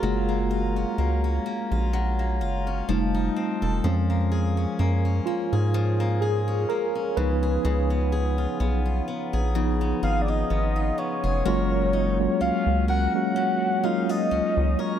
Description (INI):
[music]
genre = contemporary R&B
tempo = 63 BPM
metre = 4/4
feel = swing 54% on 16ths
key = F# major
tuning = A4 = 440 Hz
[part]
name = mellow tine electric piano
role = accompaniment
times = 0.0-15.0 s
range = E#3 to B4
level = -26 LUFS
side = right 1 dB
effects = medium stereo tremolo
[part]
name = mellow brass ensemble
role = sustained chords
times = 0.0-15.0 s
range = F#3 to A#5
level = -36 LUFS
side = right 1 dB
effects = none
[part]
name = picked swing-style acoustic guitar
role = arpeggios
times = 0.0-15.0 s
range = C#3 to A#4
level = -32 LUFS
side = left 4 dB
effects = none
[part]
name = rubbery square bass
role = bass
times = 0.0-14.8 s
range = E1 to G#2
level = -24 LUFS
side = equal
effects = none
[part]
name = soft octave-layered synth lead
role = melody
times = 10.0-15.0 s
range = C#5 to F#5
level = -26 LUFS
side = left 1 dB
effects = chorus, ping-pong delay
[sound]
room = light reverb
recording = none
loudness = -22 LUFS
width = side -10 dB against mid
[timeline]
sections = 0.0-11.5 A section; 11.5-15.0 B section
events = tine electric piano solo 0.0-11.5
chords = 0.0 F#maj7; 2.9 F7; 3.8 A#m7/E#; 7.2 C#7; 11.5 F#maj7